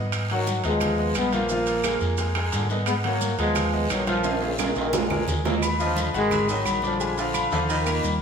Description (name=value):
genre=latin, salsa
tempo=175 BPM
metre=4/4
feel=straight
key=unclear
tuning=A4 = 440 Hz
part: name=bright grand piano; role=accompaniment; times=0.0-8.1 s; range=F3 to Gb6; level=-29 LUFS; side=left 2 dB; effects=none
part: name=fingered electric bass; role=bass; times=0.0-8.2 s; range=Ab1 to Ab2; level=-29 LUFS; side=right 1 dB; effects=none
part: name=claves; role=percussion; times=0.1-8.0 s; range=none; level=-38 LUFS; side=right 5 dB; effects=none
part: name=congas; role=percussion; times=0.1-8.2 s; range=none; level=-34 LUFS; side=equal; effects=none
part: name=guiro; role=percussion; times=0.1-8.2 s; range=none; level=-38 LUFS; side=left 2 dB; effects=none
part: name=maracas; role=percussion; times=0.1-8.2 s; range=none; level=-37 LUFS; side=right 5 dB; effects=none
part: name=timbales and agogo bells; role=percussion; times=0.1-8.0 s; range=none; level=-28 LUFS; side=right 2 dB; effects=none
part: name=warm trombone section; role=melody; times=0.3-8.2 s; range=Bb2 to Cb4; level=-26 LUFS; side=left 1 dB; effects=none
part: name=growling baritone saxophone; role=second line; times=5.8-8.1 s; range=D3 to Gb3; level=-32 LUFS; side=right 3 dB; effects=none
room=wet stone room reverb, RT60 1.3 s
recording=band playing live in one room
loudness=-21 LUFS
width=side -6 dB against mid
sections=0.0-5.6 A section; 5.6-8.2 B section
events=drum fill 4.2-5.6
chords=0.1 Abm7; 1.5 Bb5; 2.9 Abm7; 4.2 Bb5; 4.9 Bb7; 5.6 Ebmadd9; 6.3 Ab5; 7.0 Bb7; 7.7 Ebsus2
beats=| 0.13 0.47 0.82 1.16 | 1.50 1.84 2.19 2.53 | 2.87 3.21 3.56 3.90 | 4.25 4.59 4.93 5.28 | 5.62 5.96 6.31 6.66 | 7.00 7.34 7.69 8.03